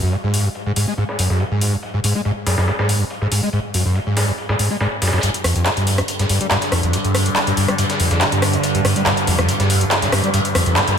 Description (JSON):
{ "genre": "driving peak-time techno", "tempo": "141 BPM", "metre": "4/4", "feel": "straight", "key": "unclear", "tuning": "A4 = 436 Hz", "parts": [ { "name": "screaming distorted acid line", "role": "riff", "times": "0.0-11.0 s", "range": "F2 to G#3", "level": "-18 LUFS", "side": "equal", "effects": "distortion, ensemble chorus, ping-pong delay" }, { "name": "breakbeat sampler-style drum kit", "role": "drums", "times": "0.1-11.0 s", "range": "hi-hat, snare drum", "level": "-26 LUFS", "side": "equal", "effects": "high-pass filter on snare, low-pass filter on snare, studio reverb, high-pass filter on hats, low-pass filter on hats, high-pass filter on room, low-pass filter on room" }, { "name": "techno drum kit", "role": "drums", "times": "0.3-11.0 s", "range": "handclaps, hi-hat, rim click", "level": "-20 LUFS", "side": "left 1 dB", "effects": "studio reverb" }, { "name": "overtone-sweeping drone", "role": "drone", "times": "6.0-11.0 s", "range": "G2 to D3", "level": "-22 LUFS", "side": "right 1 dB", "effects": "chorus, built-in reverb" } ], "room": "moderate lush hall reverb, RT60 2.2 s", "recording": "none", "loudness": "-16 LUFS", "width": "side -7 dB against mid", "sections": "0.0-5.2 A section; 5.2-11.0 B section", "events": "build-up 5.2-11.0", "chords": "0.0 F#sus2; 5.2 G5" }